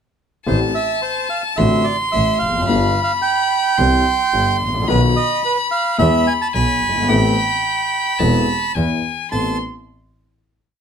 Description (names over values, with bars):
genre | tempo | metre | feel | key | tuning
tango | 109 BPM | 4/4 | rubato | A minor | A4 = 435 Hz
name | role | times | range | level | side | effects
bandoneon | melody | 0.5-9.6 s | B4 to B5 | -19 LUFS | right 6 dB | none
clear violin | second line | 0.5-9.6 s | G5 to C6 | -21 LUFS | left 3 dB | none
warm concert grand piano | accompaniment | 0.5-9.6 s | E1 to A4 | -20 LUFS | left 3 dB | none
clear double bass | bass | 0.5-9.6 s | E1 to E2 | -21 LUFS | equal | none
room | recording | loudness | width
moderate studio reverb, RT60 0.6 s | close, detailed microphones | -15 LUFS | side -7 dB against mid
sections
0.5-9.3 A section; 9.3-10.8 final chord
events
none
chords
0.5 Am7; 1.6 D7/A; 2.7 G7; 3.8 C; 4.9 B; 6.0 E; 7.1 Amadd9; 8.8 E; 9.3 Amadd9